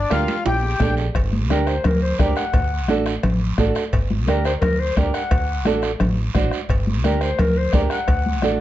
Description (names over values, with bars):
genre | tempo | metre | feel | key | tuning
latin, cumbia | 173 BPM | 4/4 | straight | G harmonic minor | A4 = 440 Hz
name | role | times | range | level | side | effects
accordion | melody | 0.0-0.9 s | D4 to G4 | -23 LUFS | left 4 dB | none
woody fretless electric bass | bass | 0.0-8.6 s | G1 to D2 | -22 LUFS | equal | none
nylon-string guitar | accompaniment | 0.1-8.6 s | D4 to C5 | -23 LUFS | right 5 dB | none
bombo | percussion | 0.1-8.6 s | none | -23 LUFS | left 1 dB | none
congas | percussion | 0.1-8.6 s | none | -25 LUFS | left 1 dB | none
guiro | percussion | 0.1-8.6 s | none | -34 LUFS | right 7 dB | none
timbales and cowbell | percussion | 0.1-8.3 s | none | -30 LUFS | right 4 dB | none
growling clarinet | second line | 1.5-8.6 s | Bb4 to F#5 | -24 LUFS | left 3 dB | none
room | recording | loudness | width
light reverb | dark, warm production, nothing above 7.8 kHz | -17 LUFS | side -13 dB against mid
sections
0.0-1.2 A section; 1.2-8.6 B section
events
drum fill 0.5-1.2; clarinet solo 1.2-8.6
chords
0.0 Gm; 2.5 D; 3.9 Gm; 5.3 D7; 6.7 Gm; 8.1 D